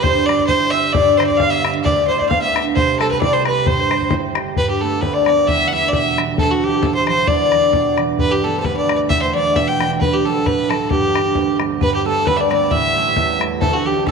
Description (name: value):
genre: celtic folk, Celtic polka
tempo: 133 BPM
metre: 2/4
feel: swing 54% on 8ths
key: C major, G major from 4.6 s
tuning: A4 = 438 Hz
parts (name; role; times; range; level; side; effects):
- clear fiddle; melody; 0.0-14.1 s; F#4 to G5; -18 LUFS; equal; none
- mandolin; second line; 0.0-4.1, 11.8-14.1 s; G4 to F5; -25 LUFS; right 8 dB; none
- mellow wooden flute; second line; 0.0-14.1 s; F#4 to G5; -22 LUFS; left 10 dB; none
- concert harp; accompaniment; 0.0-14.1 s; D1 to G4; -20 LUFS; right 9 dB; none
- bodhran; percussion; 0.0-14.1 s; none; -22 LUFS; left 4 dB; none
room: wet echo chamber reverb, RT60 2.2 s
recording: 1960s-style stereo with parts hard left and right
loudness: -14 LUFS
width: side -5 dB against mid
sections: 0.0-4.6 A section; 4.6-11.8 B section; 11.8-14.1 B section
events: none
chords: 0.0 C; 1.0 G; 2.8 C; 4.6 Gadd9; 5.5 Em7; 6.4 Dadd9; 7.3 Em7; 8.2 Gadd9; 9.1 Em7; 10.0 Dadd9; 10.9 G; 11.8 Gadd9; 12.7 A7